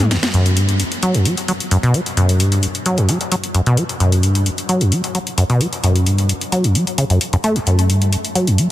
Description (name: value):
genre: driving peak-time techno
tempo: 131 BPM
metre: 4/4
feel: straight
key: F# phrygian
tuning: A4 = 440 Hz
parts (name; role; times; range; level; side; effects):
- acid bass, saw; riff; 0.0-8.7 s; F#2 to A3; -15 LUFS; equal; ping-pong delay
- techno drum kit; drums; 0.0-8.7 s; hi-hat, snare drum, toms; -22 LUFS; left 2 dB; none
- breakbeat sampler-style drum kit; drums; 0.1-8.7 s; hi-hat, snare drum; -37 LUFS; equal; none
room: light reverb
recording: dense, heavily limited modern master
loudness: -14 LUFS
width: side -14 dB against mid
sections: 0.3-8.7 A section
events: drum fill 0.1; band accent 0.2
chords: none